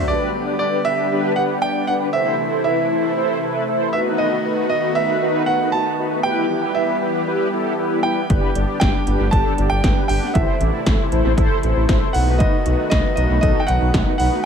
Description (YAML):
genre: synth-pop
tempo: 117 BPM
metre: 4/4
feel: straight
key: G major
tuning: A4 = 440 Hz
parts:
  - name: clear concert grand piano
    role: melody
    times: 0.0-14.5 s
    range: D5 to A5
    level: -22 LUFS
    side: right 3 dB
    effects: analog delay
  - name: mellow synth brass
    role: accompaniment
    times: 0.0-14.4 s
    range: D4 to D5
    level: -22 LUFS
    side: left 1 dB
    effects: chorus, analog delay
  - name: lush unison pad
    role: sustained chords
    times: 0.0-14.5 s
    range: C3 to G4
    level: -25 LUFS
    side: left 1 dB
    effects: chorus
  - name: smooth synth bass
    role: bass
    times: 8.3-14.3 s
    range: G1 to B1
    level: -20 LUFS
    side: equal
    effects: none
  - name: 80s electronic pad drums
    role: drums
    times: 8.3-14.3 s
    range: hi-hat, kick drum, snare drum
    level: -20 LUFS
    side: equal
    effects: analog delay
room: light reverb, digital ambience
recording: echo-heavy mix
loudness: -16 LUFS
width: side -7 dB against mid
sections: 0.1-14.5 A section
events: none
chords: 0.1 G; 2.1 Am; 3.9 B7; 6.2 Em; 8.3 G; 10.4 Am; 12.1 B7